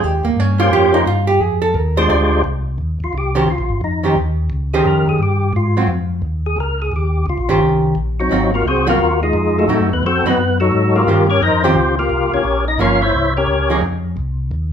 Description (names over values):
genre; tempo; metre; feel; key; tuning
soul jazz organ trio; 174 BPM; 4/4; swing 63% on 8ths; Eb mixolydian; A4 = 442 Hz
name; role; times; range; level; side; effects
archtop guitar, miked and amplified; accompaniment; 0.0-13.8 s; Eb3 to D5; -17 LUFS; right 2 dB; none
mellow tonewheel organ; bass; 0.0-14.7 s; G1 to A2; -19 LUFS; equal; slow rotary speaker
percussive tonewheel organ; melody; 0.6-13.8 s; Gb3 to F5; -17 LUFS; left 2 dB; slow rotary speaker, overdrive, chorus vibrato
room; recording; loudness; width
moderate large studio reverb, RT60 0.9 s; band playing live in one room; -14 LUFS; side -8 dB against mid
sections
0.0-2.8 A section; 2.8-14.7 A section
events
hollow-body jazz guitar solo 0.0-2.8; tonewheel organ solo 2.8-14.7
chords
0.0 Eb13; 1.4 Fm7; 2.1 Fm69; 2.8 Eb13; 5.5 Ab5; 6.9 Eb13; 8.3 Ab13; 9.7 Adim7; 11.1 Eb13; 12.4 Gm7b5; 13.1 C7b9; 13.8 F7(no3)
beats
| 0.03 0.38 0.72 1.06 | 1.41 1.75 2.10 2.44 | 2.79 3.13 3.48 3.82 | 4.17 4.51 4.86 5.20 | 5.55 5.89 6.24 6.58 | 6.93 7.27 7.62 7.96 | 8.31 8.65 9.00 9.34 | 9.69 10.03 10.38 10.72 | 11.07 11.41 11.76 12.10 | 12.45 12.79 13.14 13.48 | 13.83 14.18 14.52